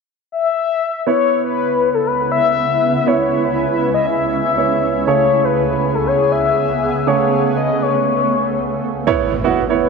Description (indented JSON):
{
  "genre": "pop",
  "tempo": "120 BPM",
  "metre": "4/4",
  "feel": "straight",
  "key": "C# minor",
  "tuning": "A4 = 441 Hz",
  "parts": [
    { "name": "mellow horn-like synth lead", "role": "melody", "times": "0.3-9.9 s", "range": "A4 to E5", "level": "-17 LUFS", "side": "left 8 dB", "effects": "chorus, phaser, slapback echo" },
    { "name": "warm baby grand piano", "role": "accompaniment", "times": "1.1-9.9 s", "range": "C#3 to C#5", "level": "-19 LUFS", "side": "right 11 dB", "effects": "none" },
    { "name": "shimmering ambient pad", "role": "sustained chords", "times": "1.7-9.1 s", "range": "C#2 to G#4", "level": "-21 LUFS", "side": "right 2 dB", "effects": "chorus, built-in reverb" },
    { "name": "impact", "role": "sound effects", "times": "9.1-9.9 s", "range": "none", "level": "-24 LUFS", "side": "right 1 dB", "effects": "none" }
  ],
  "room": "wet plate reverb, RT60 2.8 s",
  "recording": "1960s-style stereo with parts hard left and right, nothing above 10.7 kHz",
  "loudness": "-14 LUFS",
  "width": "side -4 dB against mid",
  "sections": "0.0-1.1 A section; 1.1-9.1 B section",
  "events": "impact 9.1-9.9",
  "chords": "0.0 N.C.; 1.1 C#m7; 5.1 Amaj7/C#; 9.1 C#m7"
}